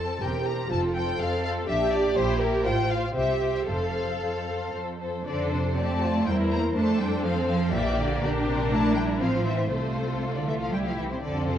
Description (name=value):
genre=quick classical-period movement for string orchestra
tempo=111-125 BPM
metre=3/4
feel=rubato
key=F major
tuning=A4 = 441 Hz
part: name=warm symphonic violin section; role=melody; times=0.0-11.6 s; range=Bb4 to Bb5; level=-32 LUFS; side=left 5 dB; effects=none
part: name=rich studio violin section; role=second line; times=0.0-11.6 s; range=C4 to D5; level=-31 LUFS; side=left 2 dB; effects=none
part: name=rich symphonic viola section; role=accompaniment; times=0.0-11.6 s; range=A3 to A4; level=-29 LUFS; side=right 1 dB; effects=none
part: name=rich symphonic cello section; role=bass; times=0.0-11.6 s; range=E2 to Bb3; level=-29 LUFS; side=right 2 dB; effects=none
part: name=rich symphonic double bass section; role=bass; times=0.2-11.6 s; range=E1 to F2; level=-31 LUFS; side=right 2 dB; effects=none
room=moderate scoring stage reverb, RT60 2.1 s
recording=worn, warbling old tape, cassette tape, warbly pitch drift, nothing above 10.7 kHz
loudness=-23 LUFS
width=side -10 dB against mid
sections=0.0-5.3 A section; 5.3-11.6 A section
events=none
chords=0.2 C7/E; 0.7 F; 1.7 Gm/Bb; 2.7 F/A; 3.2 C; 3.7 F; 6.3 C7/E; 6.8 F; 7.7 Gm/Bb; 8.2 C7/Bb; 9.2 F/A; 9.7 F/C; 10.7 C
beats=0.22 | 0.71 1.20 1.69 | 2.17 2.66 3.15 | 3.68 4.21 4.75 | 5.27 5.78 6.27 | 6.77 7.25 7.73 | 8.22 8.71 9.20 | 9.71 10.22 10.73 | 11.24